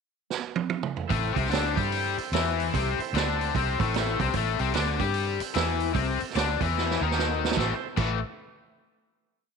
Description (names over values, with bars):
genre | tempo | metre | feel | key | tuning
blues rock power trio and southern rock | 148 BPM | 4/4 | swing 64% on 8ths | A minor | A4 = 440 Hz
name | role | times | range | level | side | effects
vintage drum kit | drums | 0.3-8.1 s | crash cymbal, hi-hat, kick drum, snare drum, toms | -30 LUFS | right 8 dB | none
overdriven tonewheel organ | sustained chords | 1.1-7.9 s | C4 to C5 | -36 LUFS | right 10 dB | slow rotary speaker
overdriven electric guitar | riff | 1.1-8.2 s | A2 to G4 | -28 LUFS | left 13 dB | none
vintage muted fingered electric bass | bass | 1.1-8.2 s | A1 to G2 | -30 LUFS | right 1 dB | none
room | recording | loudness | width
light reverb, small room reverb | 1960s-style stereo with parts hard left and right | -24 LUFS | side -5 dB against mid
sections
0.0-1.1 pickup bar; 1.1-7.6 riff; 7.6-9.2 final chord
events
drum fill 0.3-1.1, 6.8-7.6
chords
0.0 N.C.; 1.1 Am